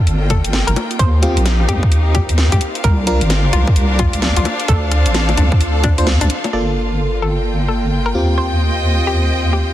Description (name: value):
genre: UK garage, two-step garage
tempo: 130 BPM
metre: 4/4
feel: swing 62% on 16ths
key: G minor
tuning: A4 = 440 Hz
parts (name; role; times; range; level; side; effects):
- hollow square pluck; melody; 0.0-9.7 s; D4 to D5; -25 LUFS; left 2 dB; chorus, digital delay
- soft string machine; sustained chords; 0.0-9.7 s; Bb3 to G5; -28 LUFS; equal; phaser, ensemble chorus, sidechain pumping
- rich studio string section; texture; 0.0-9.7 s; Bb3 to G5; -23 LUFS; left 1 dB; sidechain pumping
- deep soft wobble bass; bass; 0.1-9.7 s; G1 to Eb2; -16 LUFS; equal; chorus
- garage drum kit; drums; 0.1-6.5 s; bongos, hi-hat, rim click, snare drum; -22 LUFS; left 1 dB; low-pass filter on snare, low-pass filter on hats, low-pass filter on perc
- electronic kick drum; drums; 0.3-6.0 s; none; -15 LUFS; equal; none
- FM electric piano; stabs; 1.2-3.2, 6.0-9.7 s; Bb3 to C5; -22 LUFS; equal; chorus, cassette tape, ping-pong delay
room: light reverb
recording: dense, heavily limited modern master, vinyl crackle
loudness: -13 LUFS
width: side -13 dB against mid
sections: 0.0-6.5 A section; 6.5-9.7 B section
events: kick drops out 6.1-6.5; band accent 6.1; filter sweep on string machine 6.5-9.7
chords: 0.0 Gm9; 0.8 Eb69; 2.8 C9sus4; 4.5 Dm7; 6.5 Gm9; 8.1 Eb69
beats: 0.07 0.53 | 0.99 1.46 1.92 2.38 | 2.84 3.30 3.76 4.22 | 4.69 5.15 5.61 6.07 | 6.53 6.99 7.46 7.92 | 8.38 8.84 9.30